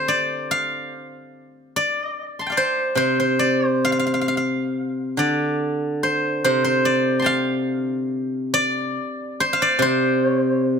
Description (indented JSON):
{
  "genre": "chinese traditional, Chinese solo plucked strings",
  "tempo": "72 BPM",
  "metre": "2/4",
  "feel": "rubato",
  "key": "C zhi mode",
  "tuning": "A4 = 441 Hz",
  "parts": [
    { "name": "steel-string zither", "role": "solo", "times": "0.0-10.8 s", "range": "C3 to C6", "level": "-19 LUFS", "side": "equal", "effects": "none" }
  ],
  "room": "light reverb",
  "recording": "close, detailed microphones",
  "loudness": "-19 LUFS",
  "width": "side -6 dB against mid",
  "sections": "0.0-10.8 A section",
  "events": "none",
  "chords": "none"
}